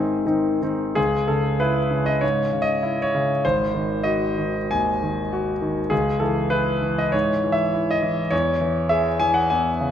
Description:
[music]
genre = classical, romantic character piece for solo piano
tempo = 98 BPM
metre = 4/4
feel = uneven beats, rubato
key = C# minor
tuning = A4 = 442 Hz
[part]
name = clear concert grand piano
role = solo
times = 0.0-9.9 s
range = G#1 to G#5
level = -19 LUFS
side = equal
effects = none
[sound]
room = moderate scoring stage reverb, RT60 2.0 s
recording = none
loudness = -19 LUFS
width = side -9 dB against mid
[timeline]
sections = 1.0-9.9 A section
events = none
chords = 0.0 G#; 1.0 C#m; 3.4 G#7; 5.9 C#m; 8.3 C#m/E

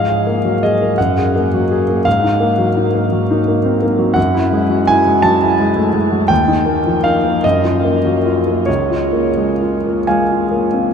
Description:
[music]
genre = classical, impressionist solo piano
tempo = 41-58 BPM (dotted quarters)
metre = 6/8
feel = rubato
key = unclear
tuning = A4 = 439 Hz
[part]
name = clear grand piano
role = solo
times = 0.0-10.9 s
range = Db2 to A5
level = -12 LUFS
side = equal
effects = none
[sound]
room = wet huge ambient reverb, RT60 7.8 s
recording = in a vast, echoing space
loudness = -12 LUFS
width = side -7 dB against mid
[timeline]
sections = 0.0-10.9 A section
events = none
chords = 0.0 Absus2; 1.0 Gbadd9; 2.1 Absus2; 4.2 Gbm9; 6.3 Ebadd9; 7.4 Gbmaj7; 8.7 Db6

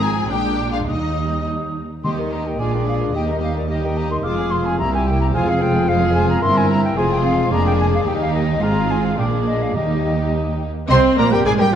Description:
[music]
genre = quick classical-period movement for symphony orchestra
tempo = 102-112 BPM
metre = 2/4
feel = rubato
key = Eb major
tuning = A4 = 442 Hz
[part]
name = warm studio violin section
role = melody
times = 0.0-11.8 s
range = G4 to C6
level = -28 LUFS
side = left 4 dB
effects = none
[part]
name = rich chamber violin section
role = second line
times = 0.0-11.6 s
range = D4 to Eb5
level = -29 LUFS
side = left 4 dB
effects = none
[part]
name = silver concert flute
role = second line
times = 0.0-11.7 s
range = D5 to Eb6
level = -24 LUFS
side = left 1 dB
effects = none
[part]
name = warm chamber viola section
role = accompaniment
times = 0.0-11.7 s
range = F3 to F4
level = -26 LUFS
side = right 2 dB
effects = none
[part]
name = warm chamber cello section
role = bass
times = 0.0-11.7 s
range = C2 to Eb3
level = -23 LUFS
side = right 3 dB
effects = none
[part]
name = warm chamber double bass section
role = bass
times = 0.0-11.5 s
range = F1 to Eb2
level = -23 LUFS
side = right 3 dB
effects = none
[part]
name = clear clarinet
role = second line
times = 2.0-11.8 s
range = G4 to C5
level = -26 LUFS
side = left 3 dB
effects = none
[part]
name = mellow cor anglais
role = second line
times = 2.0-11.8 s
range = Bb4 to Ab5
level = -28 LUFS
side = right 2 dB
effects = none
[part]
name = mellow French horn section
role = sustained chords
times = 2.0-11.8 s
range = F3 to F4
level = -25 LUFS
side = left 3 dB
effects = none
[part]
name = timpani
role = percussion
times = 2.0-2.6 s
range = Eb3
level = -30 LUFS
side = equal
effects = none
[part]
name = warm trumpet section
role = stabs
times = 10.9-11.7 s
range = G4 to C5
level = -25 LUFS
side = right 3 dB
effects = none
[sound]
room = moderate scoring stage reverb, RT60 1.8 s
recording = dark, warm production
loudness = -16 LUFS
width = side -9 dB against mid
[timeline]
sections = 0.0-2.0 A section; 2.0-10.9 B section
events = none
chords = 0.3 Bb7; 0.9 Eb; 2.6 Bb7; 3.1 Eb; 4.2 Fm; 4.8 C7; 5.3 Fm; 6.4 C7/G; 7.0 Fm; 7.5 Bb7/F; 8.1 Eb; 8.6 Fm/Ab; 9.2 Bb7; 9.8 Eb; 10.9 Eb (rootless)

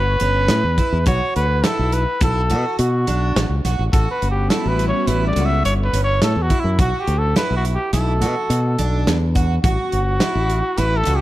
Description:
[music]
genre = progressive instrumental, band music in an uneven meter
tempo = 105 BPM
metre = 5/4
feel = straight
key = A mixolydian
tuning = A4 = 439 Hz
[part]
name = breathy trumpet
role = melody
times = 0.0-11.2 s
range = E4 to E5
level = -22 LUFS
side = equal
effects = none
[part]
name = modern bright fingered electric bass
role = bass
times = 0.0-11.2 s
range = G1 to B2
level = -19 LUFS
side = equal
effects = none
[part]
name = picked twelve-string acoustic guitar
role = arpeggios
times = 0.2-11.2 s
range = C#4 to F#4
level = -26 LUFS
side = right 4 dB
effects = tape echo
[part]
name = modern studio drum kit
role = drums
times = 0.2-11.2 s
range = hi-hat, kick drum, snare drum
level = -21 LUFS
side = equal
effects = none
[part]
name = airy breathy pad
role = accompaniment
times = 4.4-9.8 s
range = G3 to F#4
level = -28 LUFS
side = left 1 dB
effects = chorus
[sound]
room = light reverb, studio reverb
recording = dark, warm production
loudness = -16 LUFS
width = side -15 dB against mid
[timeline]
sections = 0.0-11.2 A section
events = none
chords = 0.0 A9 (rootless); 1.1 Bm7; 3.9 A13; 6.8 Bm7; 9.6 A13

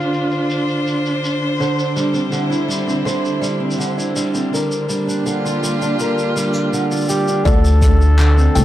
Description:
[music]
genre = folktronica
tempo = 82 BPM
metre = 4/4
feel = straight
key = D minor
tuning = A4 = 440 Hz
[part]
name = mellow flugelhorn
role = melody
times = 0.0-1.2, 7.1-8.6 s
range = F4 to A4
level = -23 LUFS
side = right 1 dB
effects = ping-pong delay, plate reverb
[part]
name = warm string quartet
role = sustained chords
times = 0.0-7.5 s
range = D3 to C5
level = -21 LUFS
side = equal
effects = low-pass filter
[part]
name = soft brush drum kit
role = drums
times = 0.0-8.6 s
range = handclaps, hi-hat, shaker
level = -29 LUFS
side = left 1 dB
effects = low-pass filter on hats, low-pass filter on perc, low-pass filter on snare, low-pass filter on room
[part]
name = fingerpicked acoustic archtop guitar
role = arpeggios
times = 1.6-8.6 s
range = D3 to C5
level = -19 LUFS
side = right 1 dB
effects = plate reverb
[part]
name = kalimba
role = second line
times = 7.5-8.6 s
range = D5 to G5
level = -26 LUFS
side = left 2 dB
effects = digital delay, plate reverb
[part]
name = upright bass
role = bass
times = 7.5-8.6 s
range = C2 to D2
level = -12 LUFS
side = equal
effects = none
[part]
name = electronic kick drum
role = drums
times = 7.5-8.0 s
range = none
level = -16 LUFS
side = equal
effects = none
[sound]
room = moderate studio reverb, RT60 0.5 s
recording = dark, warm production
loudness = -15 LUFS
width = side -13 dB against mid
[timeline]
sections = 0.0-7.5 A section; 7.5-8.6 B section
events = none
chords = 0.0 Dm7; 1.6 C/D; 4.5 Gm7/D; 7.5 Dm7

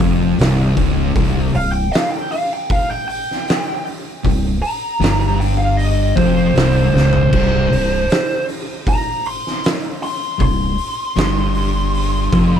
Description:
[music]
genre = stoner and doom metal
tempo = 78 BPM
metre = 4/4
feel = straight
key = unclear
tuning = A4 = 439 Hz
[part]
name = thick fuzz guitar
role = riff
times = 0.0-12.6 s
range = C2 to G2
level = -18 LUFS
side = left 8 dB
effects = distortion
[part]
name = thick fuzz guitar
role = riff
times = 0.0-12.6 s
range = C2 to G2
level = -20 LUFS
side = right 9 dB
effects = distortion
[part]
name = growling fingered electric bass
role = bass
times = 0.0-12.6 s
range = C1 to G1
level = -20 LUFS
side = equal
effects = overdrive
[part]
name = oversized low-tuned drum kit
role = drums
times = 0.0-12.5 s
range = crash cymbal, hi-hat, kick drum, snare drum, toms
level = -21 LUFS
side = equal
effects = none
[part]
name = fuzz lead guitar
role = melody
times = 1.6-12.6 s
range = C5 to C6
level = -21 LUFS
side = right 1 dB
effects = wah, distortion, tape echo
[sound]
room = little or no reverb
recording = none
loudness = -15 LUFS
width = side -9 dB against mid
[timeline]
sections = 0.0-12.6 A section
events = lead electric guitar solo 0.0-12.6; drum fill 6.9-7.3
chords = 0.0 C5

